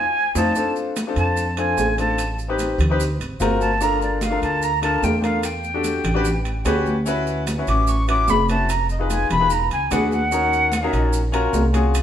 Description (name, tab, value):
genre	Afro-Cuban jazz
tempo	148 BPM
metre	4/4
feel	straight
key	unclear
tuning	A4 = 440 Hz
part	breathy jazz flute	melody	0.0-11.1 s	D5 to D6	-21 LUFS	equal	none
part	warm concert grand piano	accompaniment	0.4-11.9 s	C4 to Cb5	-24 LUFS	left 3 dB	none
part	upright bass	bass	0.4-12.0 s	E1 to F2	-23 LUFS	equal	none
part	congas	percussion	0.4-12.0 s	none	-27 LUFS	equal	none
part	maracas	percussion	0.4-12.0 s	none	-36 LUFS	right 6 dB	none
part	timbales	percussion	0.4-12.0 s	none	-30 LUFS	right 5 dB	none
room	wet stone room reverb, RT60 1.1 s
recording	band playing live in one room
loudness	-18 LUFS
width	side -10 dB against mid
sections	0.6-12.0 A section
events	drum fill 0.0-0.6; band accent 0.0-0.6; flute solo 0.0-12.0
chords	0.0 F5; 0.6 F6; 2.2 Am7b5; 3.0 D7alt; 3.8 Gm9; 5.4 Em11; 6.3 A13; 7.1 Dmaj13; 8.7 Fm7b5; 9.5 E9; 10.3 Ebm9